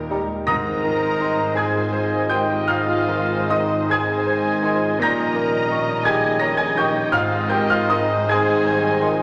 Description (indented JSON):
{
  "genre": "classical",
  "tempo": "48-58 BPM (dotted quarters)",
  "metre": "12/8",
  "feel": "rubato",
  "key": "Ab major",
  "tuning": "A4 = 441 Hz",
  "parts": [
    { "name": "bright grand piano", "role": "melody", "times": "0.0-9.2 s", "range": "Eb2 to Bb6", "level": "-24 LUFS", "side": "equal", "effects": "none" },
    { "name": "muted studio violin section", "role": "melody", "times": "0.0-9.2 s", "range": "Bb4 to Eb5", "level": "-34 LUFS", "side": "equal", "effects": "none" },
    { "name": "muted studio viola section", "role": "accompaniment", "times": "0.0-9.2 s", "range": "F3 to Bb4", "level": "-33 LUFS", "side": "equal", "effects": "none" },
    { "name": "mellow French horn section", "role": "sustained chords", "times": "0.0-9.2 s", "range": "Bb3 to Eb4", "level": "-32 LUFS", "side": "equal", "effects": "none" },
    { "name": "warm trombone section", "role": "sustained chords", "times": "0.0-9.2 s", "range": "Eb3 to Ab3", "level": "-33 LUFS", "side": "equal", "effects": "none" },
    { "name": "mellow trumpet section", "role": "stabs", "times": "0.0-9.2 s", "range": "Eb5", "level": "-32 LUFS", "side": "equal", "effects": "none" },
    { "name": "muted studio cello section", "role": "bass", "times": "0.0-9.2 s", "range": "Db2 to Bb2", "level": "-35 LUFS", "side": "equal", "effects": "none" },
    { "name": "muted studio double bass section", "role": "bass", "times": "0.0-9.2 s", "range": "Ab1 to Eb2", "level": "-35 LUFS", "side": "equal", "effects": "none" },
    { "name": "mellow hollow concert flute", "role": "second line", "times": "0.1-9.2 s", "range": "Bb5 to Db6", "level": "-34 LUFS", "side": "equal", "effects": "none" },
    { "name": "mellow bassoon", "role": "accompaniment", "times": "0.1-9.1 s", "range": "Eb3 to G3", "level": "-33 LUFS", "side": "equal", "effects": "none" },
    { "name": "clear oboe", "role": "second line", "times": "0.5-9.1 s", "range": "Eb5 to Bb5", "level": "-31 LUFS", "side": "equal", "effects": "none" },
    { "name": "muted studio violin section", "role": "second line", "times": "0.5-9.2 s", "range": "Eb5 to Bb5", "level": "-33 LUFS", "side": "equal", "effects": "none" },
    { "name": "warm clarinet", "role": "second line", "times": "0.5-9.1 s", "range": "Eb4 to Bb4", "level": "-29 LUFS", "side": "equal", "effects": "none" },
    { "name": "timpani", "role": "percussion", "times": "0.5-1.5 s", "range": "Ab2", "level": "-38 LUFS", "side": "equal", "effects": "none" }
  ],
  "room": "wet recital hall reverb, RT60 1.6 s",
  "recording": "none",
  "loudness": "-20 LUFS",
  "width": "mono",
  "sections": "0.0-9.2 A section",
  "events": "none",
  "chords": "0.5 Ab; 5.0 Eb7/Bb; 7.1 Ab",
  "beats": "| 0.47 1.57 2.69 3.90 | 5.01 6.06 7.13 8.30"
}